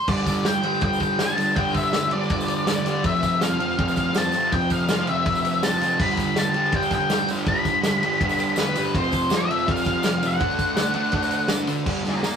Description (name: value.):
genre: garage rock duo or trio.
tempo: 163 BPM.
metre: 4/4.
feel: straight.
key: G mixolydian.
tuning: A4 = 440 Hz.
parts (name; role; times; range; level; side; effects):
octave-fuzz lead guitar; melody; 0.0-12.4 s; F4 to B5; -24 LUFS; left 2 dB; distortion.
fuzz guitar; riff; 0.1-12.2 s; F2 to D4; -24 LUFS; right 1 dB; distortion.
vintage drum kit; drums; 0.1-12.3 s; crash cymbal, hi-hat, kick drum, ride cymbal, snare drum; -25 LUFS; equal; none.
tambourine; percussion; 0.1-12.3 s; none; -38 LUFS; right 3 dB; none.
room: light reverb.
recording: rough rehearsal-room recording.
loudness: -20 LUFS.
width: side -7 dB against mid.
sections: 0.1-11.9 A section.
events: none.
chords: 0.1 G5; 3.0 F; 6.0 G; 8.9 F5; 10.4 D.